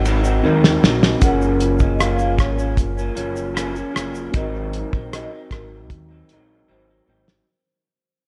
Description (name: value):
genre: indie pop, bedroom pop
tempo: 77 BPM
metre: 4/4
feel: straight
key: unclear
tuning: A4 = 442 Hz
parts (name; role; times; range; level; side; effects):
- electric guitar through a small old amp; accompaniment; 0.0-7.5 s; Gb2 to Eb4; -27 LUFS; equal; analog chorus, vibrato effect
- mellow tine electric piano; accompaniment; 0.0-7.5 s; C4 to Bb4; -27 LUFS; equal; dub echo
- upright bass; bass; 0.0-7.4 s; Gb1 to Eb2; -25 LUFS; equal; none
- cloth-damped thuddy drum kit; drums; 0.1-7.5 s; hi-hat, kick drum, ride cymbal, rim click, shaker, snare drum; -20 LUFS; equal; vintage 12-bit sampler grit
- vibraphone with soft mallets; second line; 1.2-7.2 s; Bb4 to Gb5; -32 LUFS; equal; ensemble chorus, dub echo
room: light reverb, small room ambience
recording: echo-heavy mix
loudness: -19 LUFS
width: mono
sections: 0.0-1.2 A section; 1.2-7.5 B section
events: drum fill 0.4-1.2, 6.7-7.5; fade-out 1.2-7.5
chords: 0.0 Ab7; 1.2 Gbmaj7; 4.3 Ab7